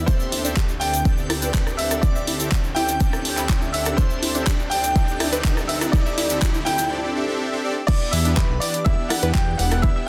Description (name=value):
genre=progressive house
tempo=123 BPM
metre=4/4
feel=straight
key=unclear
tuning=A4 = 440 Hz
part: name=lush unison pad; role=sustained chords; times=0.0-10.1 s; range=D2 to G4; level=-34 LUFS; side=equal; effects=chorus, phaser, sidechain pumping
part: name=riser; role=sound effects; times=0.0-6.9 s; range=none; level=-35 LUFS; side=equal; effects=none
part: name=bright baby grand piano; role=melody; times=0.1-10.1 s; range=B4 to G5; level=-29 LUFS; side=equal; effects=sidechain pumping, digital delay
part: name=airy dreamy lead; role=second line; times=0.1-10.1 s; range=B4 to G5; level=-37 LUFS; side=equal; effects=chorus, sidechain pumping, digital delay
part: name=tight sequenced synth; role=arpeggios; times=0.1-10.0 s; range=D4 to E5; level=-33 LUFS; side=equal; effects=chorus, phaser, sidechain pumping, digital delay
part: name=soft supersaw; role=stabs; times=0.1-10.1 s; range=B3 to F#5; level=-30 LUFS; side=equal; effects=sidechain pumping, digital delay
part: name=electronic kick drum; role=drums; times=0.1-9.9 s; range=none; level=-22 LUFS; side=equal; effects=none
part: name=pop drum kit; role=drums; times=0.1-9.9 s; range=crash cymbal, handclaps, hi-hat, rim click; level=-29 LUFS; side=equal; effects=high-pass filter on hats, high-pass filter on snare, high-pass filter on cymbals, high-pass filter on room
part: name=egg shaker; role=percussion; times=0.1-6.9 s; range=none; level=-35 LUFS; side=equal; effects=none
part: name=fat analog bass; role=bass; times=8.1-9.9 s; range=E1 to E2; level=-24 LUFS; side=equal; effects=sidechain pumping
room=moderate digital room reverb, RT60 1.3 s, digital ambience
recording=dense, heavily limited modern master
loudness=-21 LUFS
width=mono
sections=0.0-7.9 A section; 7.9-10.1 B section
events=build-up 0.0-7.9; riser 0.0-6.9; filter sweep on synth arpeggio sound 0.0-7.9; filter sweep on analog synth pad 0.0-7.9; break 6.9-7.9; drop 7.9-10.1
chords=0.1 D7sus4; 7.9 Em7